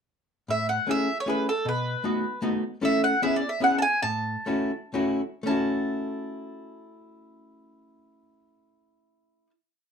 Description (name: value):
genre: musette waltz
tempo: 109-157 BPM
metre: 3/4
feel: straight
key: A major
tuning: A4 = 440 Hz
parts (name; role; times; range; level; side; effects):
- mandolin; melody; 0.5-9.5 s; A4 to A5; -26 LUFS; right 1 dB; none
- archtop guitar, miked and amplified; accompaniment; 0.5-9.5 s; A2 to A4; -26 LUFS; left 1 dB; none
room: moderate studio reverb, RT60 0.6 s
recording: dark, warm production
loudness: -24 LUFS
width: side -6 dB against mid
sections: 0.5-5.5 A section; 5.5-8.7 final chord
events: slowing down 2.8-5.5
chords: 0.5 Amaj7; 1.7 B7; 2.8 A; 3.2 E6; 4.0 A6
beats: | 0.48 0.88 1.27 | 1.66 2.05 2.44 | 2.82 3.21 3.61 | 4.02 4.47 4.95 | 5.47 6.02 6.56 | 7.10 7.64 8.18